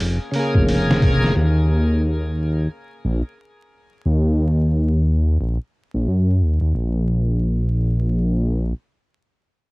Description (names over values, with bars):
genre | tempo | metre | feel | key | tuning
trip hop | 89 BPM | 4/4 | swing 60% on 16ths | Bb minor | A4 = 440 Hz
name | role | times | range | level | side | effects
dark detuned saw bass | bass | 0.0-8.7 s | F1 to Gb2 | -17 LUFS | equal | transformer saturation
trip hop sampler-style drum kit | drums | 0.0-1.4 s | hi-hat, kick drum, snare drum | -20 LUFS | equal | cassette tape
bright tonewheel organ | accompaniment | 0.3-1.3 s | Db3 to Ab4 | -23 LUFS | equal | overdrive, slow rotary speaker, harmonic tremolo, cassette tape, tape echo
room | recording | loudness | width
little or no reverb | home recording on cassette, vinyl crackle | -17 LUFS | side -25 dB against mid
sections
0.0-6.7 A section; 6.7-9.4 B section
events
none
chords
0.0 Bbm7; 1.4 N.C.